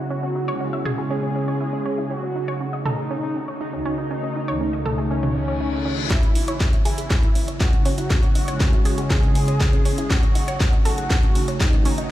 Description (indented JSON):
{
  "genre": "melodic techno",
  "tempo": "120 BPM",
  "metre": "4/4",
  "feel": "straight",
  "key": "C# minor",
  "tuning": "A4 = 439 Hz",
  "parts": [
    { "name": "fat analog lead", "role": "melody", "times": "0.0-12.1 s", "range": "C#4 to G#4", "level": "-28 LUFS", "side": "equal", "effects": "ensemble chorus, vintage 12-bit sampler grit, sidechain pumping, ping-pong delay" },
    { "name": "evolving wavetable pad", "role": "sustained chords", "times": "0.0-12.1 s", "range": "C#3 to F#4", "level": "-30 LUFS", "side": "right 1 dB", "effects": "chorus, built-in reverb, sidechain pumping" },
    { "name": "analog pluck", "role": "arpeggios", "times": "0.0-12.1 s", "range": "C#4 to E5", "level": "-30 LUFS", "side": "equal", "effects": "chorus, vintage 12-bit sampler grit, sidechain pumping, dub echo" },
    { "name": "analog drone", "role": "drone", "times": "0.0-12.1 s", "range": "C#3", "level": "-36 LUFS", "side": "equal", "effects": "none" },
    { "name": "brassy analog pad", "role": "stabs", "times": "0.5-11.8 s", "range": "C#2 to D#4", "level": "-28 LUFS", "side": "equal", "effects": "chorus, sidechain pumping, dub echo" },
    { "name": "house drum kit", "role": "drums", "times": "0.9-12.1 s", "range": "hi-hat, snare drum, toms", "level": "-28 LUFS", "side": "equal", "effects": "high-pass filter on toms, low-pass filter on toms, small room ambience, high-pass filter on snare, low-pass filter on snare, high-pass filter on hats, low-pass filter on hats" },
    { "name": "reverse cymbal", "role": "sound effects", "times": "5.5-6.1 s", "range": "none", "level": "-35 LUFS", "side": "left 7 dB", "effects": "none" },
    { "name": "electronic kick drum", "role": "drums", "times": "6.1-11.7 s", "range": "none", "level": "-18 LUFS", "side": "equal", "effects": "small room ambience" }
  ],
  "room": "light reverb, digital ambience",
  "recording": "played on a big sound system in a bare room, large studio reverb",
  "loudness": "-19 LUFS",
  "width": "side -14 dB against mid",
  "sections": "0.0-6.1 A section; 6.1-12.1 B section",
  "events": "filter sweep on ambient pad 0.0-6.1, 6.1-12.1; reverse cymbal 5.5-6.1; build-up 6.1-12.1; drum fill 6.1-12.1",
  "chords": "0.0 C#m7; 2.1 D#dim/C#; 6.1 C#m7; 10.1 D#dim/C#"
}